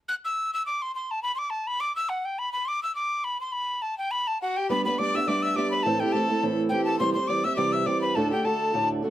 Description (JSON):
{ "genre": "celtic folk, Celtic reel", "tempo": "208 BPM", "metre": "4/4", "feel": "swing 55% on 8ths", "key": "G major", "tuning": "A4 = 440 Hz", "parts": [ { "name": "breathy mid whistle", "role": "melody", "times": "0.1-8.9 s", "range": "F#5 to F#6", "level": "-26 LUFS", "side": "left 1 dB", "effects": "none" }, { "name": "warm fiddle", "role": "second line", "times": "4.4-8.9 s", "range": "F#4 to E5", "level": "-32 LUFS", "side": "left 4 dB", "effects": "none" }, { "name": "fingerpicked old ladder-braced acoustic guitar", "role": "accompaniment", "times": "4.7-9.1 s", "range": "D2 to G4", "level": "-25 LUFS", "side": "right 3 dB", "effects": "none" } ], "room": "moderate small room reverb, RT60 0.5 s", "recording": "close, detailed microphones", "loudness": "-24 LUFS", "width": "side -13 dB against mid", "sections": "0.0-4.7 A section; 4.7-9.1 A section", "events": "none", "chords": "0.0 N.C.; 4.7 G; 5.8 Am; 7.0 C; 8.2 D" }